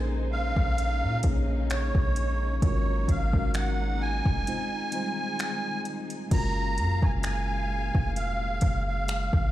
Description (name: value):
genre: contemporary R&B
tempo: 65 BPM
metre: 4/4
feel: swing 54% on 16ths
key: unclear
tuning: A4 = 437 Hz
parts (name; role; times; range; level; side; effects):
- mellow tine electric piano; accompaniment; 0.0-9.5 s; G3 to Db5; -35 LUFS; left 2 dB; medium stereo tremolo
- muted studio string section; sustained chords; 0.0-9.5 s; Bb2 to F5; -39 LUFS; equal; none
- warm 808-style bass; bass; 0.0-9.5 s; F1 to Bb2; -28 LUFS; equal; none
- musette accordion; melody; 0.3-9.5 s; Db5 to Bb5; -32 LUFS; right 2 dB; ping-pong delay
- smooth R&B drum kit; drums; 0.6-9.5 s; crash cymbal, finger snaps, hi-hat, kick drum; -26 LUFS; equal; overdrive
room: little or no reverb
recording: played on a big sound system in a bare room, stone room reverb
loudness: -25 LUFS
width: side -14 dB against mid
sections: 0.0-6.3 A section; 6.3-9.5 B section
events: break 4.5-6.3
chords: 0.0 Bbm11; 2.6 Ab13sus4; 4.5 Fm7; 6.3 Gbmaj9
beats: 0.78 1.70 | 2.62 3.55 4.47 5.39 | 6.32 7.24 8.16 9.08